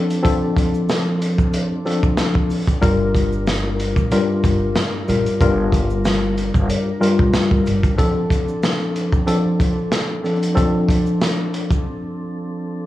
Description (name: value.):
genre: hip hop, boom-bap hip-hop.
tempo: 93 BPM.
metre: 4/4.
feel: swing 54% on 16ths.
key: G minor.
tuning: A4 = 440 Hz.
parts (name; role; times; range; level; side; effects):
mellow tine electric piano; accompaniment; 0.0-11.8 s; G2 to Bb4; -19 LUFS; left 2 dB; medium stereo tremolo, high-pass filter, low-pass filter.
mellow tonewheel organ; sustained chords; 0.0-12.9 s; F3 to Bb4; -27 LUFS; right 1 dB; slow rotary speaker, high-pass filter, low-pass filter.
crunchy breakbeat drum kit; drums; 0.1-11.8 s; hi-hat, kick drum, snare drum; -20 LUFS; equal; none.
egg shaker; percussion; 0.1-11.8 s; none; -47 LUFS; right 8 dB; none.
upright bass; bass; 2.8-7.9 s; G1 to Bb1; -22 LUFS; equal; tube saturation.
room: small room reverb.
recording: worn, warbling old tape, cassette tape, warbly pitch drift, small room ambience.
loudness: -16 LUFS.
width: side -14 dB against mid.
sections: 0.0-2.8 A section; 2.8-12.9 A section.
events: break 0.0-2.8, 11.9-12.9.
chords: 0.0 F6; 2.8 Gm7; 8.0 F6.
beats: | 0.24 0.89 1.53 2.18 | 2.83 3.47 4.12 4.76 | 5.41 6.05 6.70 7.34 | 7.99 8.63 9.28 9.92 | 10.57 11.21 11.86 12.50.